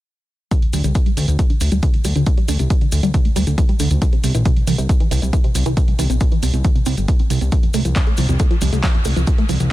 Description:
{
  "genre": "uplifting trance",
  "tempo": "137 BPM",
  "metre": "4/4",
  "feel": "straight",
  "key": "unclear",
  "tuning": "A4 = 441 Hz",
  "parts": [
    { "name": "tight sequenced synth", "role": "arpeggios", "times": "0.5-9.7 s", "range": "C2 to C4", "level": "-22 LUFS", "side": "right 1 dB", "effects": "chorus, phaser, sidechain pumping, ping-pong delay" },
    { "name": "electronic kick drum", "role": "drums", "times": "0.5-9.4 s", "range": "none", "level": "-16 LUFS", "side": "equal", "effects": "none" },
    { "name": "punchy analog drum machine", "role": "drums", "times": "0.5-9.7 s", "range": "handclaps, hi-hat", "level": "-28 LUFS", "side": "right 2 dB", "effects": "none" },
    { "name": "maracas", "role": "percussion", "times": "0.5-9.7 s", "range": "none", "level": "-32 LUFS", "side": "left 2 dB", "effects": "none" },
    { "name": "fat analog bass", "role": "bass", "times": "0.7-9.7 s", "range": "G1 to D2", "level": "-18 LUFS", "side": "equal", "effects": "sidechain pumping" }
  ],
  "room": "digital ambience",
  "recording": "dense, heavily limited modern master",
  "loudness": "-15 LUFS",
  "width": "side -16 dB against mid",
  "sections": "0.5-9.7 A section",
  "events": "filter sweep on synth arpeggio sound 0.5-9.7",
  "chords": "0.5 Csus2 (rootless); 4.0 C; 7.5 F/C",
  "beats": "| 0.51 0.95 1.39 1.83 | 2.27 2.70 3.14 3.58 | 4.02 4.46 4.89 5.33 | 5.77 6.21 6.64 7.08 | 7.52 7.96 8.40 8.84 | 9.27"
}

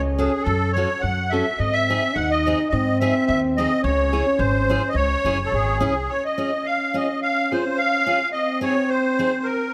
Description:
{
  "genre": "alpine folk, alpine dance band",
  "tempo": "107 BPM",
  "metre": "2/4",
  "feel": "rubato",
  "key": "C# harmonic minor, Db major from 6.1 s",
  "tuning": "A4 = 438 Hz",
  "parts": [
    { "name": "warm euphonium", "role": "second line", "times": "0.0-9.7 s", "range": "B#3 to D#4", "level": "-27 LUFS", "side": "equal", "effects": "none" },
    { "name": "upright bass", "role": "bass", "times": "0.0-6.1 s", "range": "F#1 to G#2", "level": "-27 LUFS", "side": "equal", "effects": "none" },
    { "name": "musette accordion", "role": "melody", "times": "0.2-9.7 s", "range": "G#4 to F#5", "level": "-24 LUFS", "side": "equal", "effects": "none" },
    { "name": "picked steel-string acoustic guitar", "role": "accompaniment", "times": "0.2-9.3 s", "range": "B#3 to A4", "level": "-30 LUFS", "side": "equal", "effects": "none" }
  ],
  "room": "light reverb",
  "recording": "close, detailed microphones",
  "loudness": "-21 LUFS",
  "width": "mono",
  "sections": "0.0-6.1 A section; 6.1-9.7 B section",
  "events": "none",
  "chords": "0.0 F#m; 1.6 G#; 3.8 C#m; 6.1 Db; 8.3 Ab",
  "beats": "| 0.45 1.02 | 1.59 2.16 | 2.72 3.28 | 3.84 4.39 | 4.95 5.51 | 6.08 6.65 | 7.21 7.77 | 8.33 8.89 | 9.45"
}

